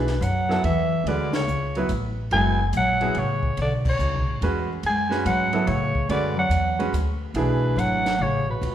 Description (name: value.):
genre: modal jazz.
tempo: 142 BPM.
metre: 3/4.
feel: swing 66% on 8ths.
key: B dorian.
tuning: A4 = 440 Hz.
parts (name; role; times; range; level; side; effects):
growling soprano saxophone; melody; 0.0-8.7 s; B4 to G#5; -25 LUFS; right 1 dB; none.
mellow bass clarinet; second line; 0.0-8.7 s; B2 to G#3; -28 LUFS; left 1 dB; none.
clear baby grand piano; accompaniment; 0.0-8.0 s; E3 to B4; -28 LUFS; right 2 dB; none.
upright bass; bass; 0.0-8.7 s; F#1 to A2; -26 LUFS; equal; none.
compact cocktail drum kit; drums; 0.1-8.7 s; crash cymbal, hi-hat, kick drum, ride cymbal, snare drum; -33 LUFS; left 1 dB; none.
room: wet recital hall reverb, RT60 1.3 s.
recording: recorded in a church or concert hall.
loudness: -20 LUFS.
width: side -10 dB against mid.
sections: 0.0-8.7 A section.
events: band accent 1.3, 3.8.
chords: 0.0 Bm9.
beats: 0.21 0.63 | 1.05 1.47 1.89 | 2.31 2.73 3.16 | 3.58 4.00 4.42 | 4.84 5.26 5.68 | 6.11 6.53 6.95 | 7.37 7.79 8.21 | 8.63.